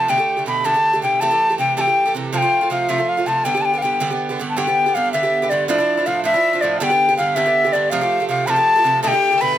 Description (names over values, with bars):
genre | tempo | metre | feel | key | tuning
celtic folk, Celtic jig | 107 BPM (dotted quarters) | 6/8 | straight | G mixolydian | A4 = 444 Hz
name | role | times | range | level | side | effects
bright wooden flute | melody | 0.0-9.6 s | D5 to B5 | -16 LUFS | left 1 dB | slapback echo
Irish bouzouki | accompaniment | 0.0-9.6 s | G2 to G4 | -22 LUFS | right 4 dB | none
clear fiddle | second line | 9.0-9.6 s | G4 to B4 | -22 LUFS | left 8 dB | none
room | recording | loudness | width
light reverb | close, detailed microphones | -15 LUFS | side -11 dB against mid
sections
0.0-4.6 A section; 4.6-9.6 A section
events
none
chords
0.1 Gadd9; 1.2 Am7; 2.3 F; 3.4 G; 5.7 Dmadd9; 6.8 G; 7.9 Fadd9; 9.0 Gadd9